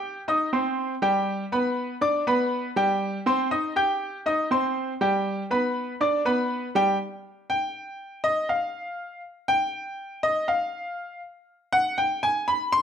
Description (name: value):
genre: latin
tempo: 120 BPM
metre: 4/4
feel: straight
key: unclear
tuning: A4 = 440 Hz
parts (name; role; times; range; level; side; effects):
- bright baby grand piano; solo; 0.0-12.8 s; G3 to G6; -23 LUFS; equal; none
room: moderate large studio reverb, RT60 1.1 s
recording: none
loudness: -23 LUFS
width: side -8 dB against mid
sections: 0.0-7.0 A section; 7.0-12.8 B section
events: grand piano solo 7.0-12.8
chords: 0.0 Cm; 1.0 G; 3.0 Cm; 5.0 G; 7.0 N.C.